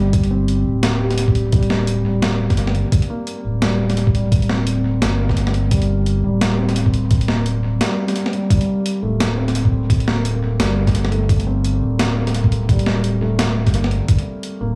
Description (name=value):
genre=half-time drum and bass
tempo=172 BPM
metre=4/4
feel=swing 58% on 16ths, half-time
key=G minor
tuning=A4 = 438 Hz
part: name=felt-muted upright piano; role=arpeggios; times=0.0-14.8 s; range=G3 to G4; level=-25 LUFS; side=equal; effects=tape echo
part: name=saturated sub bass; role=bass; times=0.0-14.8 s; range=D1 to G1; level=-22 LUFS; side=equal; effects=none
part: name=boom bap sampler-style drum kit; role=drums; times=0.1-14.5 s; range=hi-hat, snare drum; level=-25 LUFS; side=equal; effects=analog delay
part: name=electronic kick drum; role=drums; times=0.1-14.2 s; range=none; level=-19 LUFS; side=equal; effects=none
room=light reverb, digital ambience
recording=echo-heavy mix, small room ambience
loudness=-18 LUFS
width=mono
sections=0.0-14.8 A section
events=none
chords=0.0 G5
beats=| 0.13 0.48 0.83 1.18 | 1.53 1.88 2.22 2.57 | 2.92 3.27 3.62 3.97 | 4.32 4.67 5.01 5.36 | 5.71 6.06 6.41 6.76 | 7.11 7.46 7.81 8.15 | 8.50 8.85 9.20 9.55 | 9.90 10.25 10.60 10.95 | 11.29 11.64 11.99 12.34 | 12.69 13.04 13.39 13.74 | 14.09 14.43